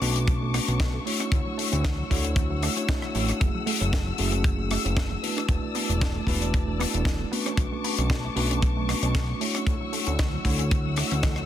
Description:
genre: nu-disco, nu disco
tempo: 115 BPM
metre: 4/4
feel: swing 54% on 16ths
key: unclear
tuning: A4 = 440 Hz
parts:
  - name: mellow tine electric piano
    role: accompaniment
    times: 0.0-11.5 s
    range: A3 to C#5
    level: -31 LUFS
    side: right 1 dB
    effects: medium stereo tremolo, sidechain pumping, analog delay
  - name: muted studio string section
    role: sustained chords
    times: 0.0-11.5 s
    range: A3 to E6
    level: -34 LUFS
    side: left 6 dB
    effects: sidechain pumping
  - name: wide unison pluck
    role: arpeggios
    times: 0.0-11.5 s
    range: E3 to D4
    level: -36 LUFS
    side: right 6 dB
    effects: sidechain pumping, analog delay
  - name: fat analog bass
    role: bass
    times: 0.0-11.5 s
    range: E1 to D2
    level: -27 LUFS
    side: equal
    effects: none
  - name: tight funk drum kit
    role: drums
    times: 0.0-11.5 s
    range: hi-hat, rim click, snare drum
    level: -31 LUFS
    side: left 4 dB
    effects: soft clipping on snare
  - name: kick drum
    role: drums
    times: 0.3-11.3 s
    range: none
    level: -25 LUFS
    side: equal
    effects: none
room: small room ambience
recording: dense, heavily limited modern master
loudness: -23 LUFS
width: side -11 dB against mid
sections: 0.0-11.5 A section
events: none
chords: 0.0 Bm9; 1.1 Dmaj9; 3.4 F#m7; 5.2 E7sus4; 7.3 Bm9; 9.4 Dmaj9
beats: 0.28 0.80 | 1.32 1.84 2.37 2.89 | 3.41 3.93 4.45 4.97 | 5.50 6.02 6.54 7.06 | 7.58 8.11 8.63 9.15 | 9.67 10.19 10.71 11.23

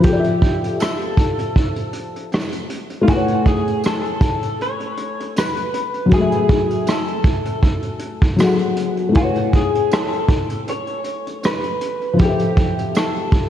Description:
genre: lo-fi hip hop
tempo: 79 BPM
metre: 4/4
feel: swing 55% on 16ths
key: A major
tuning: A4 = 440 Hz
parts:
  - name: electric guitar through a small old amp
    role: melody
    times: 0.0-13.5 s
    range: F4 to C#5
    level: -23 LUFS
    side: left 1 dB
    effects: lush chorus, diffuse ambient delay
  - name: felt-muted upright piano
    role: accompaniment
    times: 0.0-13.5 s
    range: F3 to G#5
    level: -20 LUFS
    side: left 3 dB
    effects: cassette tape
  - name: vintage brush drum kit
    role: drums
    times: 0.0-13.5 s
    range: hi-hat, kick drum, rim click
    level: -19 LUFS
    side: right 1 dB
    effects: none
  - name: tambourine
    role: percussion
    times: 0.8-13.1 s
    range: none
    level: -42 LUFS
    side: right 8 dB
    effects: none
room: moderate lush hall reverb, RT60 2.3 s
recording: dreamy mix soaked in reverb, cassette tape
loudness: -16 LUFS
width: side -10 dB against mid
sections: 0.0-13.5 A section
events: none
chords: 0.0 Fmaj9; 3.1 Amaj9; 6.1 F#m9; 9.2 Amaj9; 12.2 Fmaj9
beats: | 0.04 0.80 1.56 2.32 | 3.08 3.84 4.60 5.36 | 6.12 6.88 7.64 8.40 | 9.16 9.92 10.68 11.44 | 12.19 12.95

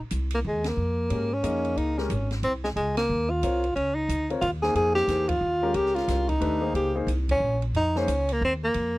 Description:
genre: modal jazz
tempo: 181 BPM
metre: 3/4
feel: swing 62% on 8ths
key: Bb dorian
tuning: A4 = 440 Hz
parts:
  - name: upright bass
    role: bass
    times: 0.1-9.0 s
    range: Ab1 to Ab2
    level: -29 LUFS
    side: equal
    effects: none
  - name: open jazz drum kit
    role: drums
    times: 0.1-8.8 s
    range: hi-hat, kick drum, ride cymbal, snare drum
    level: -38 LUFS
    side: equal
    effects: none
  - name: warm tenor saxophone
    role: melody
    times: 0.3-9.0 s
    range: Ab3 to Ab4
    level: -25 LUFS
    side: equal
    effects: none
  - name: warm concert grand piano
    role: accompaniment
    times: 1.1-8.1 s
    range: Ab3 to Eb5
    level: -30 LUFS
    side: left 3 dB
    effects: none
room: little or no reverb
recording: dry, close 1970s-style studio recording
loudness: -23 LUFS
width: side -19 dB against mid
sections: 0.0-9.0 A section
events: band accent 0.6, 2.9, 5.3, 7.2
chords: 0.0 Bbm11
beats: 0.11 0.45 | 0.78 1.11 1.44 | 1.77 2.10 2.43 | 2.77 3.10 3.43 | 3.76 4.09 4.42 | 4.76 5.09 5.42 | 5.75 6.09 6.42 | 6.75 7.08 7.42 | 7.75 8.08 8.41 | 8.75

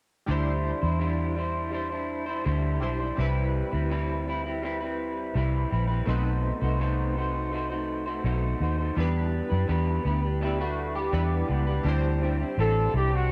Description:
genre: indie pop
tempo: 83 BPM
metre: 4/4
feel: straight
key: unclear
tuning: A4 = 438 Hz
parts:
  - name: chorused retro synth keys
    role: accompaniment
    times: 0.3-13.3 s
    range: G3 to C5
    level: -38 LUFS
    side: equal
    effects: tremolo, cassette tape
  - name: electric guitar through a small old amp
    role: accompaniment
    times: 0.3-13.3 s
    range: B2 to C5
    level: -34 LUFS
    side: equal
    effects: lush chorus, vibrato effect, cassette tape
  - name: vintage muted fingered electric bass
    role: bass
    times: 0.3-13.3 s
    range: A1 to F#2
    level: -29 LUFS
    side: equal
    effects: none
  - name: electric guitar through a small old amp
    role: second line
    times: 10.4-11.8 s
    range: G3 to G4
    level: -35 LUFS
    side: equal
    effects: analog chorus, cassette tape, tape echo
  - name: mellow trumpet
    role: melody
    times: 12.6-13.3 s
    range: F#4 to A4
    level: -28 LUFS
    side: equal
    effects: lush chorus, cassette tape
room: moderate booth ambience, RT60 0.3 s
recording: home recording on cassette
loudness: -27 LUFS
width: mono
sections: 0.3-11.9 A section; 11.9-13.3 B section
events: none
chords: 0.3 D9sus4; 3.2 Cmaj7; 6.1 B7b9; 9.0 Em7; 11.9 D9sus4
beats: | 0.28 1.00 1.73 2.45 | 3.18 3.90 4.63 5.35 | 6.07 6.80 7.52 8.24 | 8.96 9.69 10.41 11.13 | 11.86 12.58 13.30

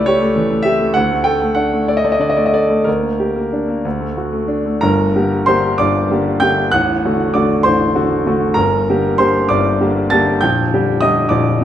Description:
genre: classical, romantic character piece for solo piano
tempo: 60-69 BPM (dotted quarters)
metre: 6/8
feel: rubato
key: G minor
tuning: A4 = 440 Hz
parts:
  - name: warm grand piano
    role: solo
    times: 0.0-11.6 s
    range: A0 to A6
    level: -13 LUFS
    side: equal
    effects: none
room: moderate recital hall reverb, RT60 1.7 s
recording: none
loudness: -13 LUFS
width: side -10 dB against mid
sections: 0.0-4.8 A section; 4.8-11.6 B section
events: none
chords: 0.0 A7/C#; 1.0 D5; 2.9 Gm/D; 3.8 D; 4.8 Gm; 6.7 D7/A; 8.6 Gm; 10.4 Gm/Bb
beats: 0.06 | 0.96 1.88 | 2.86 3.85 | 4.82 5.77 | 6.71 7.63 | 8.56 9.49 | 10.41 11.30

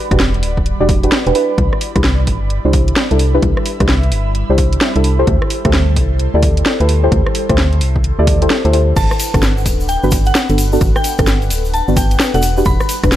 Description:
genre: UK garage, two-step garage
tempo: 130 BPM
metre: 4/4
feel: swing 64% on 16ths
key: G major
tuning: A4 = 445 Hz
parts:
  - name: airy breathy pad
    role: sustained chords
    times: 0.0-13.2 s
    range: G3 to B5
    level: -26 LUFS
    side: right 2 dB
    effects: chorus, phaser, sidechain pumping
  - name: deep mellow chord stab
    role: stabs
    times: 0.0-13.1 s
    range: B3 to D5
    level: -18 LUFS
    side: equal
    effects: chorus, vintage 12-bit sampler grit, ping-pong delay
  - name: organ-like FM bass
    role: bass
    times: 0.1-13.2 s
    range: D1 to D2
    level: -15 LUFS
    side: equal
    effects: none
  - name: electronic kick drum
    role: drums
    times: 0.1-13.1 s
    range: none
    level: -17 LUFS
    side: equal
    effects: none
  - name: garage drum kit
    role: drums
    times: 0.1-13.2 s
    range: crash cymbal, hi-hat, rim click, snare drum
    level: -18 LUFS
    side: equal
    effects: overdrive
  - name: soft synth bell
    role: melody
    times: 9.0-13.0 s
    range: F#5 to B5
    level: -22 LUFS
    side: left 1 dB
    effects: chorus, ping-pong delay
  - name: tube shaker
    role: percussion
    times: 9.0-13.2 s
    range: none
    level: -27 LUFS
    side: left 3 dB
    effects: none
room: digital ambience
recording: none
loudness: -12 LUFS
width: side -12 dB against mid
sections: 0.0-13.2 A section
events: none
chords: 0.0 Gmaj7; 1.4 Cmaj9; 5.3 D7sus4; 9.0 Gmaj9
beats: 0.20 0.66 1.12 | 1.58 2.04 2.50 2.96 | 3.43 3.89 4.35 4.81 | 5.27 5.74 6.20 6.66 | 7.12 7.58 8.04 8.50 | 8.96 9.43 9.89 10.35 | 10.81 11.27 11.73 12.20 | 12.66 13.12

